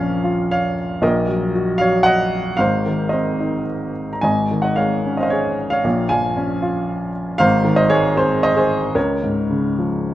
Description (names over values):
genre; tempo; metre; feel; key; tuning
classical, lyrical solo piano; 113 BPM; 3/4; uneven beats, rubato; unclear; A4 = 444 Hz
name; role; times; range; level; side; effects
warm upright piano; solo; 0.0-10.1 s; Ab1 to Bb5; -16 LUFS; equal; none
room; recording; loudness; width
light reverb; close, detailed microphones; -16 LUFS; side -14 dB against mid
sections
0.0-10.1 A section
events
none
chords
0.0 Bbm; 1.0 Ebm7/Bb; 2.6 Ab; 4.2 Absus4; 5.8 Bbm; 7.4 Ab; 9.0 Db6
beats
0.50 | 1.02 1.54 2.07 | 2.60 3.13 3.67 | 4.23 4.78 5.32 | 5.85 6.37 6.88 | 7.39 7.91 8.43 | 8.96 9.50 10.06